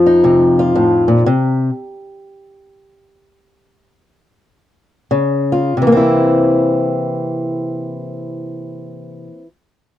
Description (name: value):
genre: blues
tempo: free time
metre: none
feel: none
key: C mixolydian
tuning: A4 = 440 Hz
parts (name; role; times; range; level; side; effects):
- fingerpicked old ladder-braced acoustic guitar; solo; 0.0-1.7, 5.1-9.5 s; F2 to F4; -13 LUFS; left 1 dB; none
room: light reverb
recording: dry, close 1970s-style studio recording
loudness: -12 LUFS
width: side -12 dB against mid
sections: 0.0-5.8 A section; 5.8-10.0 B section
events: slowing down 1.3-5.8; stop 1.3-5.1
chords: 0.0 F7; 1.3 N.C.; 5.1 Db; 5.8 C7